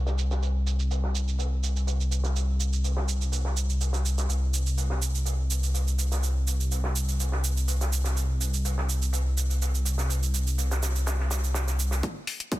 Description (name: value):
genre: progressive house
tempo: 124 BPM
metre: 4/4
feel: straight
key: unclear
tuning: A4 = 440 Hz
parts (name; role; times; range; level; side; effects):
- dark detuned saw bass; bass; 0.0-12.0 s; C2; -25 LUFS; equal; sidechain pumping
- electronic cabasa and hi-hat; drums; 0.1-12.6 s; none; -34 LUFS; right 6 dB; high-pass filter on snare, low-pass filter on snare, high-pass filter on hats, low-pass filter on hats, high-pass filter on perc, low-pass filter on perc, high-pass filter on room, low-pass filter on room
- loose indie drum kit; drums; 0.1-12.0 s; hi-hat, snare drum; -37 LUFS; right 1 dB; sidechain pumping on hats, high-pass filter on hats, low-pass filter on hats, high-pass filter on snare, low-pass filter on snare, high-pass filter on room, low-pass filter on room
- electronic kick drum; drums; 12.0-12.6 s; none; -30 LUFS; equal; high-pass filter on kick, high-pass filter on room
room: little or no reverb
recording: dense, heavily limited modern master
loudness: -24 LUFS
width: side -16 dB against mid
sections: 0.0-12.0 A section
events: none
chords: none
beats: | 0.42 0.91 1.39 1.87 | 2.36 2.84 3.33 3.81 | 4.29 4.78 5.26 5.75 | 6.23 6.71 7.20 7.68 | 8.16 8.65 9.13 9.62 | 10.10 10.58 11.07 11.55 | 12.04 12.52